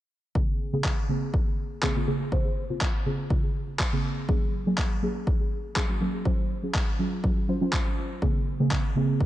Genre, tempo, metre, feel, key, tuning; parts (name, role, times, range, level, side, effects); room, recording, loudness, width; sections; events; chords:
deep house; 122 BPM; 4/4; swing 54% on 16ths; Bb minor; A4 = 440 Hz
deep mellow chord stab; stabs; 0.3-9.3 s; Db3 to C5; -28 LUFS; right 1 dB; chorus, sidechain pumping, analog delay
electronic kick drum; drums; 0.4-9.3 s; -27 LUFS; equal; overdrive
electronic handclaps; drums; 0.8-8.8 s; -32 LUFS; equal
moderate plate reverb, RT60 2.2 s; dreamy mix soaked in reverb, nothing above 10.4 kHz; -24 LUFS; side -14 dB against mid
0.4-9.3 A section
0.4 Bbm9; 4.3 Ab9sus4; 6.3 Dbadd11/Gb; 8.2 Bbm9